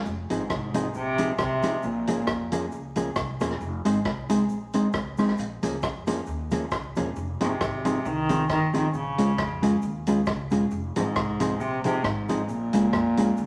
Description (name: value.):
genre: ska.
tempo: 135 BPM.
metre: 4/4.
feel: swing 56% on 8ths.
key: F minor.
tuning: A4 = 439 Hz.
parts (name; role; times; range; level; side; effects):
upright bass; bass; 0.0-13.5 s; E1 to F2; -38 LUFS; equal; none.
cabasa; percussion; 0.1-13.5 s; none; -56 LUFS; equal; none.
warm cello; melody; 0.3-2.7, 7.4-13.5 s; Ab2 to Eb3; -29 LUFS; equal; none.
mellow electric guitar; accompaniment; 0.3-13.3 s; F3 to Ab4; -28 LUFS; equal; spring reverb.
vintage drum kit; drums; 0.3-13.3 s; hi-hat, kick drum, rim click; -34 LUFS; equal; none.
room: wet large studio reverb, RT60 1.0 s.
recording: vinyl crackle.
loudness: -26 LUFS.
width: mono.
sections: 0.1-13.5 A section.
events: none.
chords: 0.1 Fm7; 1.8 Bbm7; 3.6 Fm7 (rootless); 5.4 Bbm7; 7.2 Fm7; 8.9 Bbm7 (rootless); 10.7 Fm7; 12.5 Bbm7.